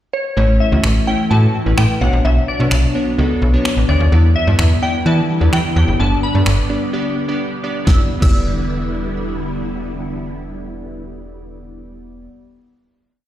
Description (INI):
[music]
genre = dance-pop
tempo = 128 BPM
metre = 4/4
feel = straight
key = E dorian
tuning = A4 = 435 Hz
[part]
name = glassy wavetable pluck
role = melody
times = 0.1-12.3 s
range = C#5 to E6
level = -23 LUFS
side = left 1 dB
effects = chorus, ping-pong delay
[part]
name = glassy digital keys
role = accompaniment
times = 0.4-12.3 s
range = A3 to D5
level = -22 LUFS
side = right 1 dB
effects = chorus
[part]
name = string machine, cellos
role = sustained chords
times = 0.4-11.9 s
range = D3 to G4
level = -24 LUFS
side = left 2 dB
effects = phaser, ensemble chorus, sidechain pumping
[part]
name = slap-like FM bass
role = bass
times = 0.4-12.3 s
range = E1 to E3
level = -15 LUFS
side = equal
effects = sidechain pumping
[part]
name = pop drum kit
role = drums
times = 0.8-8.4 s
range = crash cymbal, finger snaps, kick drum, snare drum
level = -18 LUFS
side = equal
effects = none
[sound]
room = light reverb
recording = played on a big sound system in a bare room, stone room reverb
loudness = -14 LUFS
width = side -12 dB against mid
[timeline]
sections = 0.0-0.4 pickup bar; 0.4-7.9 verse; 7.9-11.6 final chord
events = break 6.9-7.9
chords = 0.4 A; 2.0 Bmadd9; 4.1 Em7; 6.0 G; 7.9 Em7